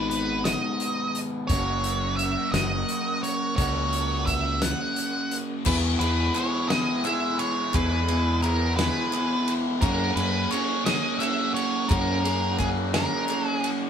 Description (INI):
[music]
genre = indie rock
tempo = 58 BPM (dotted quarters)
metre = 6/8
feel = straight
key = E lydian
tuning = A4 = 443 Hz
[part]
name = octave-fuzz lead guitar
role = melody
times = 0.0-13.7 s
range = G#4 to F#5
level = -28 LUFS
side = right 2 dB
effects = distortion
[part]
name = electric guitar through a small old amp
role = riff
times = 0.0-13.9 s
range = E2 to G#4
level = -29 LUFS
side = right 2 dB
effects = none
[part]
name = raw garage guitar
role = riff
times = 0.0-13.9 s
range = F#2 to G#4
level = -31 LUFS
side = left 4 dB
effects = overdrive, phaser
[part]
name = growling fingered electric bass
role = bass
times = 0.0-13.0 s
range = F#1 to F#2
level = -28 LUFS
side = equal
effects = overdrive
[part]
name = loose indie drum kit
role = drums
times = 0.1-13.8 s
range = crash cymbal, hi-hat, kick drum, ride cymbal, snare drum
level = -30 LUFS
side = equal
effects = none
[part]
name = string machine, violins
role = sustained chords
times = 1.5-5.6 s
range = A#4 to D#6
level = -39 LUFS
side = equal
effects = ensemble chorus
[part]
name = group handclap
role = percussion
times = 5.7-13.7 s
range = none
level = -40 LUFS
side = left 7 dB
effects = none
[sound]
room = moderate studio reverb, RT60 0.6 s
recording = band playing live in one room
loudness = -22 LUFS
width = side -8 dB against mid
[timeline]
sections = 0.0-5.7 A section; 5.7-13.9 B section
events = none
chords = 0.0 G#m; 1.5 F#; 5.7 E; 9.8 F#add9